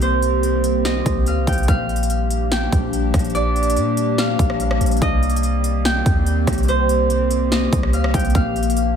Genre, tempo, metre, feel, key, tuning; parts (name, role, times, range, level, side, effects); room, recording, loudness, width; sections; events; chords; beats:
hip hop, atmospheric cloud-rap; 144 BPM; 4/4; half-time; Bb major; A4 = 436 Hz
concert harp; melody; 0.0-9.0 s; C5 to G5; -23 LUFS; right 2 dB; digital delay
warbly tape-like pad; sustained chords; 0.0-9.0 s; Eb3 to G4; -22 LUFS; left 2 dB; chorus, built-in reverb, phaser, sidechain pumping
warm 808-style bass; bass; 0.0-9.0 s; Bb1 to Bb2; -20 LUFS; equal
big-room dance drum kit; drums; 0.0-8.9 s; hi-hat, kick drum, rim click, snare drum; -22 LUFS; equal
digital ambience; -16 LUFS; side -8 dB against mid
0.0-1.7 A section; 1.7-9.0 B section
0.0 Cm7; 1.7 Bb6; 5.0 Cm7; 8.3 Bb6
| 0.02 0.43 0.85 1.27 | 1.68 2.10 2.52 2.93 | 3.35 3.77 4.18 4.60 | 5.02 5.43 5.85 6.27 | 6.68 7.10 7.52 7.93 | 8.35 8.77